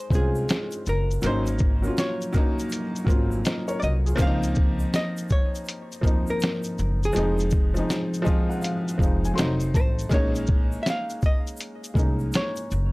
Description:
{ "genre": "lo-fi hip hop", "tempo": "81 BPM", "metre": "4/4", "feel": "swing 65% on 16ths", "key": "Bb minor", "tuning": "A4 = 440 Hz", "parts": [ { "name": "hollow-body jazz guitar", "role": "melody", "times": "0.0-12.9 s", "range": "Ab4 to F5", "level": "-30 LUFS", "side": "equal", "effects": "analog delay" }, { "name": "felt-muted upright piano", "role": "accompaniment", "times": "0.0-12.9 s", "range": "F3 to C6", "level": "-28 LUFS", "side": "equal", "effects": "none" }, { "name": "upright bass", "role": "bass", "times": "0.1-12.9 s", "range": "F1 to Eb2", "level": "-26 LUFS", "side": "equal", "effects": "none" }, { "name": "lo-fi sampler-style drum kit", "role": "drums", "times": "0.1-12.9 s", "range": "hi-hat, kick drum, shaker, snare drum", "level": "-23 LUFS", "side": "equal", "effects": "none" }, { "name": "egg shaker", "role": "percussion", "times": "0.1-12.9 s", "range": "none", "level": "-49 LUFS", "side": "right 2 dB", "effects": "none" } ], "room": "little or no reverb", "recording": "dry, gritty hardware recording", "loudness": "-22 LUFS", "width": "side -23 dB against mid", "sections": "0.0-12.9 A section", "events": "none", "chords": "0.0 Bbm11; 1.2 Ab9sus4; 4.2 Dbmaj13; 7.2 Fm7; 9.4 F7b9; 10.1 Bbm11" }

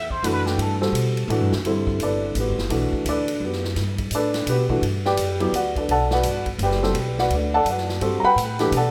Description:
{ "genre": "modal jazz", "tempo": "170 BPM", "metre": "3/4", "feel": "swing 63% on 8ths", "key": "G major", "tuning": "A4 = 440 Hz", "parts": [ { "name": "trumpet with plunger mute", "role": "melody", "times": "0.0-0.7 s", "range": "G4 to E5", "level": "-30 LUFS", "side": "equal", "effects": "none" }, { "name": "upright bass", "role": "bass", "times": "0.0-8.9 s", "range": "F#1 to B2", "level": "-28 LUFS", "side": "equal", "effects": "none" }, { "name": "swinging big-band drum kit", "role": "drums", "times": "0.1-8.8 s", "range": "hi-hat, kick drum, ride cymbal, snare drum", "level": "-33 LUFS", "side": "equal", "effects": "none" }, { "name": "warm baby grand piano", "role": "accompaniment", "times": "0.2-8.9 s", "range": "D3 to B5", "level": "-24 LUFS", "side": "equal", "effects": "none" } ], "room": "moderate plate reverb, RT60 1.4 s, studio reverb", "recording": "rough home demo mix", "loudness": "-22 LUFS", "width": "mono", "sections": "0.0-1.6 A section; 1.6-8.9 A section", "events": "muted trumpet solo 0.0-1.6", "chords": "0.0 Gmaj9" }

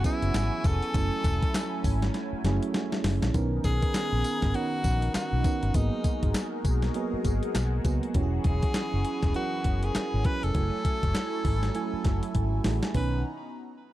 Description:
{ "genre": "R&B, new jack swing", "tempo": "100 BPM", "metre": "4/4", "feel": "swing 60% on 16ths", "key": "B major", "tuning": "A4 = 441 Hz", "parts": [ { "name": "bright tenor saxophone", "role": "melody", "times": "0.0-13.2 s", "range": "D#4 to B4", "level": "-33 LUFS", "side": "left 1 dB", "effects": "ping-pong delay" }, { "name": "FM electric piano", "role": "accompaniment", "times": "0.0-13.2 s", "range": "D#3 to G#5", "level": "-32 LUFS", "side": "right 4 dB", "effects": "chorus" }, { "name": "phased analog pad", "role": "sustained chords", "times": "0.0-13.2 s", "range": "B2 to A#5", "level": "-36 LUFS", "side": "equal", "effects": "phaser, chorus" }, { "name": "crisp 8-bit digital drum machine", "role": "drums", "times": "0.0-13.1 s", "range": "handclaps, hi-hat, kick drum, snare drum, tambourine", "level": "-28 LUFS", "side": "equal", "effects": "none" }, { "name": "vintage muted fingered electric bass", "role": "bass", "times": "0.2-13.2 s", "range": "E1 to C#2", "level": "-28 LUFS", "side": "equal", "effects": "none" } ], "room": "digital ambience", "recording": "dark, warm production", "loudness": "-25 LUFS", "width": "side -15 dB against mid", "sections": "0.0-3.3 A section; 3.3-12.9 B section", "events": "drum fill 2.1-3.3, 12.3-12.9", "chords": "0.0 E69; 0.9 F#m9; 3.3 Bmaj9; 5.7 G#m9; 8.1 E69; 10.5 F#m9; 12.9 Bmaj9" }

